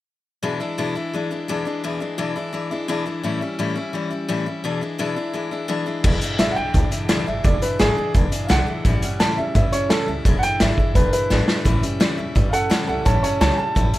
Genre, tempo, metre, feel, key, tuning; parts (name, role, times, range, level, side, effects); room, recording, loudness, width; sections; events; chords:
rockabilly; 171 BPM; 4/4; straight; E mixolydian; A4 = 443 Hz
picked steel-string acoustic guitar; accompaniment; 0.4-14.0 s; E2 to E4; -24 LUFS; left 3 dB; plate reverb
upright bass; bass; 6.0-14.0 s; E1 to G2; -23 LUFS; equal
vintage drum kit; drums; 6.0-14.0 s; crash cymbal, hi-hat, kick drum, snare drum; -20 LUFS; equal
dark upright piano; melody; 6.4-14.0 s; C#4 to A5; -23 LUFS; right 1 dB; plate reverb, tape echo
light reverb; -18 LUFS; side -16 dB against mid
0.4-6.0 A section; 6.0-14.0 B section
drum fill 11.3-11.7
0.4 E7; 3.2 A7; 4.6 E7; 8.8 A7; 10.2 E7; 11.7 A7